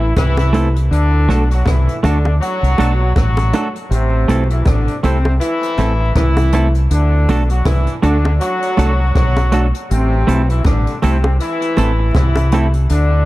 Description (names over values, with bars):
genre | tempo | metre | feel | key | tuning
roots reggae | 80 BPM | 4/4 | swing 58% on 16ths | A dorian | A4 = 440 Hz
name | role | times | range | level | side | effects
warm horn section | second line | 0.0-13.3 s | C3 to F#4 | -20 LUFS | left 1 dB | tape echo
semi-hollow electric guitar | accompaniment | 0.0-12.7 s | A3 to A4 | -22 LUFS | right 3 dB | tape echo
deep dub fingered electric bass | bass | 0.0-13.3 s | A1 to D2 | -14 LUFS | equal | tube saturation
jazz brush drum kit | drums | 0.2-13.1 s | hi-hat, kick drum, rim click | -20 LUFS | equal | none
bongos | percussion | 0.2-12.7 s | none | -24 LUFS | equal | none
room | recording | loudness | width
light reverb, studio ambience | dark, warm production, vinyl crackle | -12 LUFS | side -17 dB against mid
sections
0.0-13.3 A section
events
none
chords
0.0 Am; 0.9 D; 3.9 Am; 6.9 D; 9.9 Am